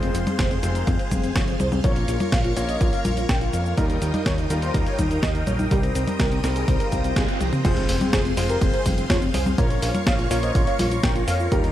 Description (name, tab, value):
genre	italo disco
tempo	124 BPM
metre	4/4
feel	straight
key	F minor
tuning	A4 = 440 Hz
part	mellow synth brass	melody	0.0-11.7 s	C4 to G5	-27 LUFS	equal	chorus, tape echo
part	string machine, full ensemble	sustained chords	0.0-11.7 s	Ab4 to Eb6	-31 LUFS	equal	phaser, ensemble chorus
part	clear concert grand piano	stabs	0.0-11.7 s	G3 to Db5	-31 LUFS	left 3 dB	none
part	fat analog bass	bass	0.0-11.7 s	F1 to F2	-26 LUFS	equal	none
part	clean 12-bit digital drum machine	drums	0.0-11.7 s	cabasa, congas, crash cymbal, hi-hat, snare drum, toms	-27 LUFS	left 1 dB	studio reverb
part	electronic kick drum	drums	0.4-11.6 s	none	-24 LUFS	equal	studio reverb
part	swell and impact	sound effects	6.8-9.6 s	none	-33 LUFS	right 1 dB	none
room	light reverb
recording	dark, warm production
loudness	-19 LUFS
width	side -12 dB against mid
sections	0.0-7.6 A section; 7.6-11.7 B section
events	swell 6.8-7.6; band accent 7.2; drum fill 7.4; impact 7.6-9.6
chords	0.0 Fm; 1.8 Bbm; 3.8 Ebadd9; 5.7 Cm7; 7.6 Fm; 9.6 Bbm